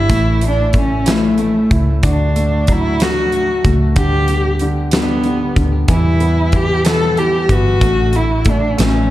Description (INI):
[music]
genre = six-eight pop ballad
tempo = 62 BPM (dotted quarters)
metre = 6/8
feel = straight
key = D major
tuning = A4 = 440 Hz
[part]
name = dark cello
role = melody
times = 0.0-9.1 s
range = A3 to A4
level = -17 LUFS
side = equal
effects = none
[part]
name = warm baby grand piano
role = accompaniment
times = 0.0-9.1 s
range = D3 to E4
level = -22 LUFS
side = equal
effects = none
[part]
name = clean electric guitar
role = arpeggios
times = 0.0-9.1 s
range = E2 to G4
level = -24 LUFS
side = left 4 dB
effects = wide subtle chorus
[part]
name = vintage muted fingered electric bass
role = bass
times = 0.0-9.1 s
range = G1 to E2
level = -17 LUFS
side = equal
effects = none
[part]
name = huge arena drum kit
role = drums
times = 0.1-8.9 s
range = hi-hat, kick drum, snare drum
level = -18 LUFS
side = equal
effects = none
[sound]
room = small room ambience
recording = dark, warm production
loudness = -12 LUFS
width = side -15 dB against mid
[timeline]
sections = 0.0-9.1 A section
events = none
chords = 0.1 A; 2.0 D; 4.0 G/D; 5.9 Em; 7.8 D/A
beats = | 0.10 1.06 | 2.04 3.01 | 3.97 4.93 | 5.89 6.85 | 7.81 8.78